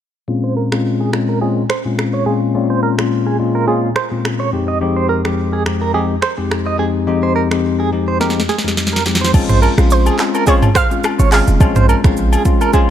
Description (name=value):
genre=afrobeats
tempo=106 BPM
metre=4/4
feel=swing 55% on 16ths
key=unclear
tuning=A4 = 439 Hz
part: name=bell-like tine electric piano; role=accompaniment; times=0.3-12.9 s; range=F2 to G4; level=-16 LUFS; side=left 3 dB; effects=lush chorus, low-pass filter
part: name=direct-recorded clean electric guitar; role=riff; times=0.4-12.9 s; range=Ab4 to Eb5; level=-21 LUFS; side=right 7 dB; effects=tremolo, low-pass filter, ping-pong delay
part: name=afro-pop drum kit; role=drums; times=0.7-12.9 s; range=crash cymbal, finger snaps, handclaps, hi-hat, kick drum, rim click, shaker, snare drum, toms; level=-17 LUFS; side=right 1 dB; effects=none
part: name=hard-hitting 808-style bass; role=bass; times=9.3-12.4 s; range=F1 to Bb1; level=-13 LUFS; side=right 1 dB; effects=none
part: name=agogo bells and woodblock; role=percussion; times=9.3-12.7 s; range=none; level=-25 LUFS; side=left 6 dB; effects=none
part: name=analog pluck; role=melody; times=9.9-12.1 s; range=C5 to F5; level=-20 LUFS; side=right 2 dB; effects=chorus, ping-pong delay
room=light reverb, digital ambience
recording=none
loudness=-13 LUFS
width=side -10 dB against mid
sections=0.3-9.3 A section; 9.3-12.9 B section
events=filter sweep 0.3-9.3; drum fill 8.2-9.3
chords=0.3 Bbm7; 4.5 Fm7; 9.3 Bbm7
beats=| 0.28 0.85 1.42 1.98 | 2.55 3.11 3.68 4.25 | 4.81 5.38 5.94 6.51 | 7.08 7.64 8.21 8.77 | 9.34 9.91 10.47 11.04 | 11.60 12.17 12.74